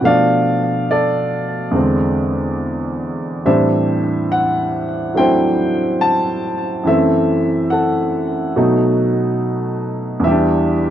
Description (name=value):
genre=solo jazz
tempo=70 BPM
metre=4/4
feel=swing 67% on 8ths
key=unclear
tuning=A4 = 441 Hz
part: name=warm baby grand piano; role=solo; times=0.0-10.9 s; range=E2 to A5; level=-14 LUFS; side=equal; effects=tape echo
room=little or no reverb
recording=dry, close 1970s-style studio recording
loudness=-15 LUFS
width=side -10 dB against mid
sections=0.0-10.9 A section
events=none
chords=0.0 Bm7b5; 1.7 E7b13; 3.5 Am7; 6.9 F#m7b5; 8.6 B7; 10.2 Em7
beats=| 0.04 0.89 1.75 2.60 | 3.45 4.30 5.15 6.00 | 6.85 7.70 8.55 9.40 | 10.25